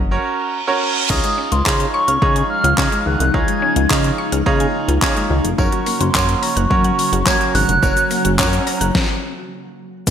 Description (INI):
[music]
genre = dance-pop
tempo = 107 BPM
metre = 4/4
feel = straight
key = Db major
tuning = A4 = 439 Hz
[part]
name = chorused synth bass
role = bass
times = 0.0-10.1 s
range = F1 to Db3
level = -19 LUFS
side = left 1 dB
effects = sidechain pumping
[part]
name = reverse cymbal and swell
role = sound effects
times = 0.4-1.1, 7.5-8.9 s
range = none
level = -26 LUFS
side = right 1 dB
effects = none
[part]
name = bright baby grand piano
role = accompaniment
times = 0.1-8.8 s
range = Db4 to Db5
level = -22 LUFS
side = right 4 dB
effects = sidechain pumping
[part]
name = hollow clarinet-like synth lead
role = melody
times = 1.1-8.6 s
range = C6 to Ab6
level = -20 LUFS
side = equal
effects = chorus
[part]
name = ethereal airy pad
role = sustained chords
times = 1.9-10.1 s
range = Db3 to Gb4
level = -25 LUFS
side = left 1 dB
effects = ensemble chorus, built-in reverb, phaser, sidechain pumping
[part]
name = mallet-like synth pluck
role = arpeggios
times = 1.1-8.9 s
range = Db3 to Gb6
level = -27 LUFS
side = left 2 dB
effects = chorus, sidechain pumping, digital delay
[part]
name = deep house drum kit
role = drums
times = 1.1-10.1 s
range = crash cymbal, handclaps, hi-hat, kick drum, shaker, snare drum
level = -20 LUFS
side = left 1 dB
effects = overdrive, gated reverb
[part]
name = tambourine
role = percussion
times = 5.6-8.8 s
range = none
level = -33 LUFS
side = left 9 dB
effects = none
[sound]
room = moderate lush hall reverb, RT60 1.8 s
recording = bright 1980s-style digital production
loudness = -14 LUFS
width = side -8 dB against mid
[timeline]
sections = 0.0-1.1 A section; 1.1-10.1 B section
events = reverse cymbal 0.4-1.1; swell 7.5-10.1; stop 8.9-10.1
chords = 0.0 Gb; 1.1 Dbadd9; 5.6 Gb